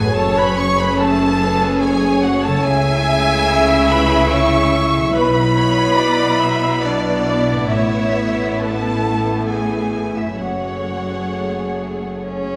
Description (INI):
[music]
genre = cinematic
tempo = 64-73 BPM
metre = 3/4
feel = rubato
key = F# minor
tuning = A4 = 439 Hz
[part]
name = warm symphonic violin section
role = melody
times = 0.0-12.2 s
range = D5 to C#6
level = -24 LUFS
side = equal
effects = none
[part]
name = bright flute section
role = second line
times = 0.0-12.2 s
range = D5 to C#6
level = -28 LUFS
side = equal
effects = none
[part]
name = clear clarinet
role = second line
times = 0.0-12.2 s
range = D4 to C#5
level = -28 LUFS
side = equal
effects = none
[part]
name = warm symphonic violin section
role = second line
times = 0.0-12.6 s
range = A3 to A4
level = -27 LUFS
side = equal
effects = none
[part]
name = rich symphonic viola section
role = accompaniment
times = 0.0-12.6 s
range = A3 to E5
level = -25 LUFS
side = equal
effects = none
[part]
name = concert harp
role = arpeggios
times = 0.0-12.6 s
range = F#2 to G#4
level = -28 LUFS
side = equal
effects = none
[part]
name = clear symphonic double bass section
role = bass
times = 0.0-12.6 s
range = F#1 to C#2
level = -27 LUFS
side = equal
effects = none
[part]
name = rich symphonic cello section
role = bass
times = 0.0-12.6 s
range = F#2 to C#3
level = -26 LUFS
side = equal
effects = none
[part]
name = mellow French horn section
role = sustained chords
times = 0.2-12.6 s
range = F#3 to G#4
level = -26 LUFS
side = equal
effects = none
[part]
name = rich cello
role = melody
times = 12.2-12.6 s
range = C#4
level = -28 LUFS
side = equal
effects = none
[sound]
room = wet scoring stage reverb, RT60 1.9 s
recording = none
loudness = -17 LUFS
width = mono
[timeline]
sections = 0.0-12.6 A section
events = none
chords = 0.2 F#madd9; 2.6 C#m; 5.1 Esus2/B; 7.7 Asus2; 10.4 F#madd9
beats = | 0.15 0.99 1.82 | 2.64 3.48 4.31 | 5.14 5.97 6.83 | 7.69 8.60 9.48 | 10.39 11.32 12.24